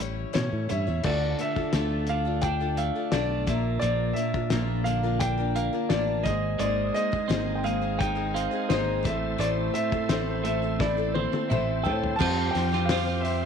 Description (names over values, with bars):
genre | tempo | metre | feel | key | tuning
folk rock and heartland rock | 86 BPM | 4/4 | straight | unclear | A4 = 440 Hz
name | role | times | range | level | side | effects
picked acoustic archtop guitar | accompaniment | 0.0-13.5 s | A2 to C#5 | -32 LUFS | left 11 dB | none
twelve-string electric guitar | riff | 0.0-13.5 s | A2 to A4 | -31 LUFS | right 11 dB | lush chorus
fingered electric bass | bass | 0.0-13.4 s | Ab1 to B2 | -29 LUFS | right 1 dB | none
loose indie drum kit | drums | 0.0-13.4 s | crash cymbal, hi-hat, kick drum, snare drum, toms | -31 LUFS | left 4 dB | none
warm concert grand piano | melody | 0.3-13.5 s | C5 to A5 | -30 LUFS | equal | none
bright tonewheel organ | sustained chords | 6.6-13.5 s | C4 to C5 | -39 LUFS | equal | slow rotary speaker, overdrive, chorus vibrato
room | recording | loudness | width
light reverb, small room reverb | 1960s-style stereo with parts hard left and right | -24 LUFS | side -7 dB against mid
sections
0.0-1.0 A section; 1.0-12.2 B section; 12.2-13.5 C section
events
drum fill 10.8-12.2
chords
0.0 A7; 1.0 Dm; 3.5 Bb; 6.3 Abadd9; 9.0 Am; 12.2 Fsus2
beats
0.35 | 1.04 1.74 2.43 3.13 | 3.82 4.52 5.21 5.91 | 6.61 7.30 8.00 8.70 | 9.39 10.09 10.79 11.49 | 12.19 12.89